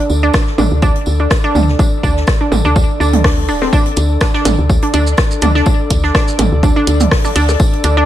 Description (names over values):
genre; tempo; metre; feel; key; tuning
minimal techno; 124 BPM; 4/4; swing 55% on 16ths; unclear; A4 = 440 Hz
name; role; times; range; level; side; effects
airy breathy pad; texture; 0.0-8.1 s; D4 to D5; -22 LUFS; left 1 dB; chorus, sidechain pumping
woody FM bass; bass; 0.1-8.0 s; D1 to D2; -14 LUFS; equal; tube saturation, sidechain pumping
swinging big-band drum kit; drums; 0.1-8.0 s; hi-hat, snare drum, tambourine; -28 LUFS; left 1 dB; high-pass filter on hats, high-pass filter on snare, high-pass filter on perc, high-pass filter on room
resonant blip pluck; riff; 0.2-8.0 s; C4 to D4; -18 LUFS; right 2 dB; chorus, sidechain pumping, ping-pong delay
electronic kick drum; drums; 0.3-7.7 s; none; -14 LUFS; equal; none
punchy analog drum machine; drums; 0.3-7.9 s; hi-hat, rim click, shaker; -19 LUFS; equal; none
electronic toms and percussion blips; percussion; 0.6-7.6 s; none; -18 LUFS; right 4 dB; digital delay
room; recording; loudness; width
little or no reverb; none; -11 LUFS; side -12 dB against mid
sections
0.0-8.1 A section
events
none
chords
0.0 D5